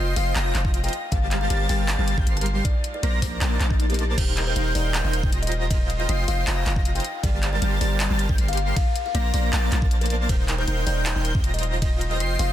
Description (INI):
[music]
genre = future bass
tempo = 157 BPM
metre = 4/4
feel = swing 53% on 16ths, half-time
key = unclear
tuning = A4 = 442 Hz
[part]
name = kalimba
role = melody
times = 0.0-12.5 s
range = G4 to A5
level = -32 LUFS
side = left 5 dB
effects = sidechain pumping
[part]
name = airy dreamy lead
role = arpeggios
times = 0.0-12.5 s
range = G6 to C7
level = -32 LUFS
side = equal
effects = chorus, sidechain pumping
[part]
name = dense compressed supersaw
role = riff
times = 0.0-12.5 s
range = G3 to C6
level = -29 LUFS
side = equal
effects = sidechain pumping
[part]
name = long sustained 808-style bass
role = bass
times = 0.0-12.5 s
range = Eb1 to Eb2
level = -24 LUFS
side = equal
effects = sidechain pumping
[part]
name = dubstep drum kit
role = drums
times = 0.2-12.5 s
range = crash cymbal, handclaps, hi-hat, ride cymbal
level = -30 LUFS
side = equal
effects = overdrive
[part]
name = electronic kick drum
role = drums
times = 0.6-11.9 s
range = none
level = -23 LUFS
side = equal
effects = none
[part]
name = swell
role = sound effects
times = 3.5-4.2 s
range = none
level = -39 LUFS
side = left 4 dB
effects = none
[sound]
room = little or no reverb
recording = dense, heavily limited modern master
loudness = -20 LUFS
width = side -12 dB against mid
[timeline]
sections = 0.0-12.5 A section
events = swell 3.5-4.2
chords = 0.0 Eb69; 0.9 Gm11; 2.6 Bbmaj9; 4.2 Eb69; 7.0 Gm11; 8.8 Bbmaj9; 10.3 Eb69